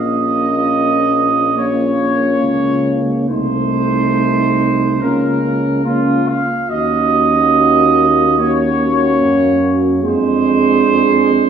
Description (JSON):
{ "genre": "classical, hymn-like piece for brass band", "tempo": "70 BPM", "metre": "4/4", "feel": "rubato", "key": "Bb minor", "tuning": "A4 = 441 Hz", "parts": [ { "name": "mellow trumpet section", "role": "melody", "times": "0.0-11.5 s", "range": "F4 to F5", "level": "-16 LUFS", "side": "right 3 dB", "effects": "none" }, { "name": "mellow French horn section", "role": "second line", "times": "0.0-11.5 s", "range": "Eb4 to Ab4", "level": "-22 LUFS", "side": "right 2 dB", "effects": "none" }, { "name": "clear euphonium", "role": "accompaniment", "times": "0.0-11.5 s", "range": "Db4 to Eb4", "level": "-18 LUFS", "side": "equal", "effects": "none" }, { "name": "warm trombone", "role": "accompaniment", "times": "0.0-11.5 s", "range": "Ab3 to Bb3", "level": "-22 LUFS", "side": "right 2 dB", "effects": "none" }, { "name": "warm tuba", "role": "bass", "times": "0.0-11.5 s", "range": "Bb1 to Gb2", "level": "-19 LUFS", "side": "right 2 dB", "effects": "none" } ], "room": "wet recital hall reverb, RT60 1.5 s", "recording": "heard from further back in the room", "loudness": "-12 LUFS", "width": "side -7 dB against mid", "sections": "0.0-11.5 A section", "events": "none", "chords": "0.0 Bbm; 3.3 Adim/C; 5.0 Bbm/Db; 6.7 Ebm7; 10.0 Ddim/F" }